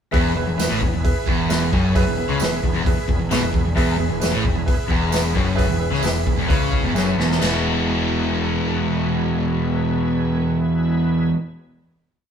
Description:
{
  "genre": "classic rock",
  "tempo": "131 BPM",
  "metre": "4/4",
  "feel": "straight",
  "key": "E major",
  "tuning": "A4 = 441 Hz",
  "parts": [
    { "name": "bright upright piano", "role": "accompaniment", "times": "0.1-11.3 s", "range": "G#4 to G#5", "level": "-27 LUFS", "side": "right 3 dB", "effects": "none" },
    { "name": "bright tonewheel organ", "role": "sustained chords", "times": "0.1-11.3 s", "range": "B3 to B4", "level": "-34 LUFS", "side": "right 2 dB", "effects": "slow rotary speaker, overdrive, chorus vibrato" },
    { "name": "crunchy overdriven guitar", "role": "riff", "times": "0.1-11.4 s", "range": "E2 to E4", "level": "-22 LUFS", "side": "left 3 dB", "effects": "none" },
    { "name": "sludgy distorted guitar", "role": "riff", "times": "0.1-11.4 s", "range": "E2 to G#4", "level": "-25 LUFS", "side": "right 6 dB", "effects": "overdrive" },
    { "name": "growling picked electric bass", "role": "bass", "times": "0.1-11.3 s", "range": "E1 to C#2", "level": "-27 LUFS", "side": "equal", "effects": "overdrive" },
    { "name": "vintage drum kit", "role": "drums", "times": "0.1-7.5 s", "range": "hi-hat, kick drum, snare drum, splash cymbal", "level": "-22 LUFS", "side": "equal", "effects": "none" },
    { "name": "tambourine", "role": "percussion", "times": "0.6-7.6 s", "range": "none", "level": "-34 LUFS", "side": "right 7 dB", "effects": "none" }
  ],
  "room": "moderate stone room reverb, RT60 1.0 s",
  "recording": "band playing live in one room",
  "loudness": "-18 LUFS",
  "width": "side -8 dB against mid",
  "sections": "0.1-7.4 riff; 7.4-11.1 final chord",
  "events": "upright piano fill 6.7-7.4; drum fill 7.0-7.4",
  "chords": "0.1 E"
}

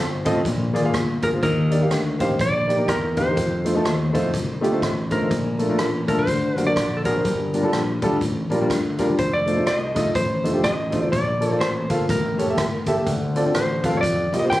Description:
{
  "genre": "uptempo gospel",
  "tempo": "124 BPM",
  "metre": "4/4",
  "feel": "swing 60% on 8ths",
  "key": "Bb major",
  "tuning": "A4 = 440 Hz",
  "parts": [
    { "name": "clean lap steel guitar", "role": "melody", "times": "0.0-14.6 s", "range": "A4 to G5", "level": "-25 LUFS", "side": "equal", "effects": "none" },
    { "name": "warm concert grand piano", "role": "accompaniment", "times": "0.0-14.6 s", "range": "G2 to F5", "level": "-22 LUFS", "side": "left 1 dB", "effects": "none" },
    { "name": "modern bright fingered electric bass", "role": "bass", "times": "0.0-14.6 s", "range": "F1 to F2", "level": "-26 LUFS", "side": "equal", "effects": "none" },
    { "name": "swinging big-band drum kit", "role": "drums", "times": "0.3-14.6 s", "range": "hi-hat, kick drum, rim click", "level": "-28 LUFS", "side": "equal", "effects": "none" }
  ],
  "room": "light reverb",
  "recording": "recorded on a phone in the room, club reverb",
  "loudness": "-19 LUFS",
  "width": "side -16 dB against mid",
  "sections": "0.0-14.6 A section",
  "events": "none",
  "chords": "0.5 Bb7(no3); 1.4 Ebmaj7; 3.4 F7; 5.3 Bbmaj7; 6.3 Daug7; 7.2 Gm7; 9.2 F7; 11.1 Bbmaj7; 12.1 A7(no3); 13.1 Dm7; 14.0 Fsus4"
}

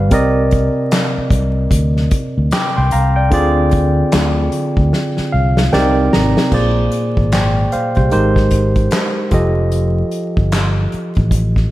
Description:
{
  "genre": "R&B, neo-soul",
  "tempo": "75 BPM",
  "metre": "4/4",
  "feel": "swing 60% on 16ths",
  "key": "C minor",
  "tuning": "A4 = 439 Hz",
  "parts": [
    { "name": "barky tine electric piano", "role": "accompaniment", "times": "0.0-11.7 s", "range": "Bb2 to D6", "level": "-16 LUFS", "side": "right 1 dB", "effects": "overdrive" },
    { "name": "fingered electric bass", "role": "bass", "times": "0.0-11.7 s", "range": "F1 to D2", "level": "-16 LUFS", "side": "equal", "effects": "none" },
    { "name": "unplugged drum kit", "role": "drums", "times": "0.1-11.7 s", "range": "crash cymbal, handclaps, hi-hat, kick drum, snare drum", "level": "-18 LUFS", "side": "equal", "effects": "none" }
  ],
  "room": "moderate lush hall reverb, RT60 2.2 s",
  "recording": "dreamy mix soaked in reverb, vinyl crackle",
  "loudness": "-12 LUFS",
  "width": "side -16 dB against mid",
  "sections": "0.0-6.5 A section; 6.5-11.7 B section",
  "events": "drum fill 4.9-6.5; tine electric piano fill 4.9-6.5",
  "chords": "0.1 Cm9; 3.3 Dm7b5; 5.7 Cm9; 6.5 Bb9; 8.1 Abmaj9; 9.3 F7"
}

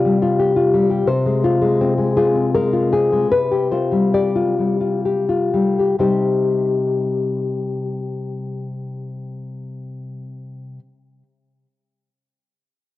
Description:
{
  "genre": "romantic piece for solo classical guitar",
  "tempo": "59-88 BPM",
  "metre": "3/4",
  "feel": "rubato",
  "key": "C minor",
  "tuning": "A4 = 440 Hz",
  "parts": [
    { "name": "nylon-string guitar", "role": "solo", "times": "0.0-10.8 s", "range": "C3 to D5", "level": "-17 LUFS", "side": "left 2 dB", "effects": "cassette tape, analog delay" }
  ],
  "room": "moderate spring reverb, RT60 1.9 s, studio reverb",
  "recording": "home recording on cassette",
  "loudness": "-16 LUFS",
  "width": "side -15 dB against mid",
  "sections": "0.0-6.0 A section; 6.0-11.2 B section",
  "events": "slowing down 0.0-6.0",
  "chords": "0.0 G5/C; 1.1 Fm/C; 3.3 G5/C; 6.0 Cm"
}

